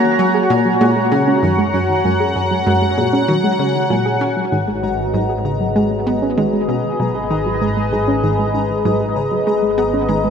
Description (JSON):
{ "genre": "ambient, sequencer-driven space music", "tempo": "97 BPM", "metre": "4/4", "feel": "straight", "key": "G# minor", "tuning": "A4 = 444 Hz", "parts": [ { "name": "sweeping resonant pad", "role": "sustained chords", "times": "0.0-10.3 s", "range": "F#4 to A#5", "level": "-18 LUFS", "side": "left 1 dB", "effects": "chorus" }, { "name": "analog pluck", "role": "riff", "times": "0.0-10.3 s", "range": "F#2 to C#4", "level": "-20 LUFS", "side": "equal", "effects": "chorus, tape echo" }, { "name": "pulsing gated texture", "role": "texture", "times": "0.0-10.3 s", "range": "G#5 to A#5", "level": "-31 LUFS", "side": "right 1 dB", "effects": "chorus, built-in reverb" }, { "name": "soft round pluck", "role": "arpeggios", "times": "0.2-10.3 s", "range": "D#3 to G#4", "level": "-21 LUFS", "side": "right 1 dB", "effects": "chorus, auto-pan, vintage 12-bit sampler grit, tape echo" }, { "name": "fat analog bass", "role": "bass", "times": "4.5-10.3 s", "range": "G#1", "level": "-27 LUFS", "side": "equal", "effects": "none" } ], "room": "wet lush hall reverb, RT60 2.8 s", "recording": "dreamy mix soaked in reverb", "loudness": "-14 LUFS", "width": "side -7 dB against mid", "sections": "0.0-4.5 A section; 4.5-10.3 B section", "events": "none", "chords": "0.0 F#; 4.5 G#m" }